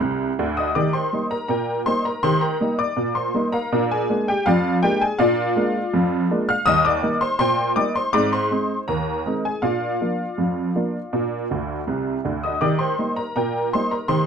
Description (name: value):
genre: ragtime piano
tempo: 81 BPM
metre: 2/4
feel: straight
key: Eb major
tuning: A4 = 445 Hz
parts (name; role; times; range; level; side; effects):
- honky-tonk upright piano; solo; 0.0-14.3 s; C2 to F6; -19 LUFS; equal; none
room: moderate small room reverb, RT60 0.5 s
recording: dark, warm production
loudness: -19 LUFS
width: side -7 dB against mid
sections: 0.8-14.3 A section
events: honky-tonk piano fill 0.0-0.8, 11.5-12.6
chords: 0.0 N.C.; 0.8 Eb; 3.7 Bb7; 6.7 Eb; 8.1 Ab; 9.6 Bb; 12.6 Eb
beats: 0.02 | 0.76 1.50 | 2.24 2.98 | 3.72 4.46 | 5.19 5.93 | 6.67 7.41 | 8.14 8.89 | 9.63 10.38 | 11.12 11.87 | 12.61 13.36 | 14.10